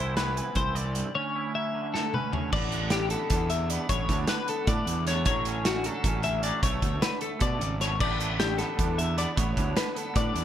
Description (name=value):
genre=math rock and midwest emo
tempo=307 BPM (eighths)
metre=7/8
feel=straight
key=unclear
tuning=A4 = 441 Hz
part: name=twangy electric guitar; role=accompaniment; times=0.0-10.4 s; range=D2 to G4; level=-34 LUFS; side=right 6 dB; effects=analog chorus
part: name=twelve-string electric guitar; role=arpeggios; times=0.0-10.4 s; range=F#4 to E5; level=-30 LUFS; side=left 6 dB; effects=wide subtle chorus
part: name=fuzz fingered electric bass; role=bass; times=0.0-10.4 s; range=G#1 to B2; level=-30 LUFS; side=equal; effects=overdrive
part: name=loose indie drum kit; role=drums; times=0.2-10.4 s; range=crash cymbal, hi-hat, kick drum, snare drum, toms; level=-29 LUFS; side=right 1 dB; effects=none
room=light reverb, small room ambience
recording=bright 1980s-style digital production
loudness=-25 LUFS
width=side -10 dB against mid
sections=0.0-2.5 A section; 2.5-10.4 B section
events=drum fill 1.9-2.5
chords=0.0 Cmaj7; 1.2 Dmaj9; 2.5 Asus4; 5.3 Dmaj7/A; 6.6 Bm9; 8.0 A9sus4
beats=0.18 0.37 0.57 0.77 0.96 | 1.16 1.35 1.55 1.75 1.94 2.14 2.33 | 2.53 2.73 2.92 3.12 3.31 3.51 3.70 | 3.90 4.09 4.29 4.49 4.68 4.88 5.07 | 5.27 5.46 5.66 5.86 6.05 6.25 6.44 | 6.64 6.83 7.03 7.22 7.42 7.62 7.81 | 8.01 8.20 8.40 8.59 8.79 8.98 9.18 | 9.38 9.57 9.77 9.96 10.16 10.35